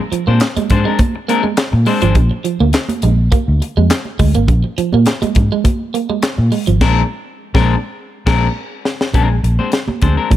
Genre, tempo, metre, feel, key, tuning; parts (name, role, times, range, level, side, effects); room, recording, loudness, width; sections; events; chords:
funk; 103 BPM; 4/4; straight; Bb mixolydian; A4 = 438 Hz
clean electric guitar; accompaniment; 0.0-2.2, 6.8-10.3 s; Ab3 to C5; -19 LUFS; left 7 dB
clean electric guitar; riff; 0.1-6.8 s; F3 to Bb3; -20 LUFS; right 9 dB
vintage muted fingered electric bass; bass; 0.1-10.4 s; Ab1 to Bb2; -14 LUFS; equal
tight funk drum kit; drums; 0.1-10.4 s; crash cymbal, handclaps, hi-hat, kick drum, snare drum; -16 LUFS; equal
congas; percussion; 0.3-10.4 s; -23 LUFS; right 4 dB
small room reverb; -12 LUFS; side -12 dB against mid
0.0-9.1 A section; 9.1-10.4 B section
band accent 6.8-9.1; drum fill 8.6-9.1
0.0 Bb9